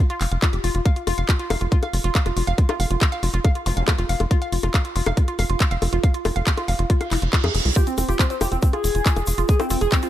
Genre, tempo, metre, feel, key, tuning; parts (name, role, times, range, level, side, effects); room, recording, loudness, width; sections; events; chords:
psychedelic trance; 139 BPM; 4/4; straight; F minor; A4 = 440 Hz
woody wave-folded pluck; riff; 0.0-10.1 s; E4 to F5; -28 LUFS; moving between left 6 dB and right 7 dB; chorus, auto-pan, sidechain pumping, dub echo
garage drum kit; drums; 0.1-10.1 s; bongos, handclaps, hi-hat; -26 LUFS; left 2 dB
tight sequencer bass; bass; 0.2-9.9 s; F1 to F2; -22 LUFS; equal
electronic kick drum; drums; 0.4-10.0 s; -18 LUFS; equal
zap and reverse cymbal; sound effects; 3.7-3.8, 7.1-7.8 s; -29 LUFS; right 4 dB
overdriven synth lead; melody; 7.8-10.1 s; C4 to Ab4; -25 LUFS; left 1 dB; distortion, chorus, phaser, sidechain pumping, ping-pong delay
egg shaker; percussion; 7.8-10.1 s; -34 LUFS; left 4 dB
digital ambience; -18 LUFS; side -13 dB against mid
0.0-10.1 A section
reverse cymbal 7.1-7.8
0.0 F5